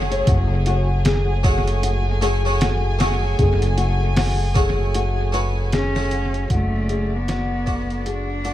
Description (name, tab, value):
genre	trip hop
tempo	77 BPM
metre	4/4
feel	swing 59% on 16ths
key	F# minor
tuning	A4 = 435 Hz
part	harpsichord	accompaniment	0.0-8.5 s	A3 to G#5	-28 LUFS	right 2 dB	tremolo, tape echo
part	warm chamber violin section	sustained chords	0.0-8.5 s	A3 to G#5	-30 LUFS	equal	none
part	flamenco guitar	arpeggios	0.0-8.5 s	F#4 to C#5	-27 LUFS	left 5 dB	vintage 12-bit sampler grit, tape echo
part	upright bass	bass	0.0-8.5 s	F#1	-21 LUFS	equal	none
part	trip hop sampler-style drum kit	drums	0.1-8.5 s	hi-hat, kick drum, snare drum	-22 LUFS	equal	tape echo
part	rich cello	melody	5.8-8.5 s	A3 to D4	-27 LUFS	equal	tape echo
room	small room ambience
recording	echo-heavy mix, vinyl crackle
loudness	-18 LUFS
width	side -13 dB against mid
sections	0.0-8.5 A section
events	fade-out 4.4-8.5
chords	0.3 F#madd9; 6.5 D/F#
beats	| 0.27 1.05 1.83 2.61 | 3.39 4.17 4.95 5.73 | 6.51 7.29 8.06